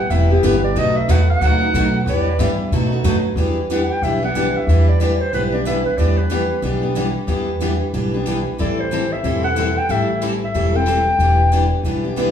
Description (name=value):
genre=acoustic string swing (jazz manouche)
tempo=184 BPM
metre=4/4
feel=swing 59% on 8ths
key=E minor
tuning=A4 = 443 Hz
part: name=breathy clarinet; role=melody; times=0.0-11.7 s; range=G4 to G5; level=-21 LUFS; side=left 1 dB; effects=none
part: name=picked steel-string acoustic guitar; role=accompaniment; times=0.1-12.3 s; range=B2 to A4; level=-23 LUFS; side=left 3 dB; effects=none
part: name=picked steel-string acoustic guitar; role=accompaniment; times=0.1-12.3 s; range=B2 to B4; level=-23 LUFS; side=right 2 dB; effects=none
part: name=upright bass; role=bass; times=0.1-12.3 s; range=E1 to B2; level=-19 LUFS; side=equal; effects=none
room=wet large studio reverb, RT60 1.2 s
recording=band playing live in one room, small room ambience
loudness=-15 LUFS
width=side -8 dB against mid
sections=0.0-3.4 A section; 3.4-12.3 B section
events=clarinet solo 0.0-3.4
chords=0.0 Cmaj7; 0.8 B7; 2.1 Em7; 2.7 B7; 3.4 Em7; 8.6 Am7; 11.2 Em7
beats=0.11 0.43 | 0.76 1.08 1.41 1.74 | 2.06 2.39 2.71 3.04 | 3.37 3.69 4.02 4.35 | 4.67 5.00 5.33 5.65 | 5.98 6.30 6.63 6.96 | 7.28 7.61 7.93 8.26 | 8.59 8.91 9.24 9.56 | 9.89 10.22 10.54 10.87 | 11.19 11.52 11.85 12.17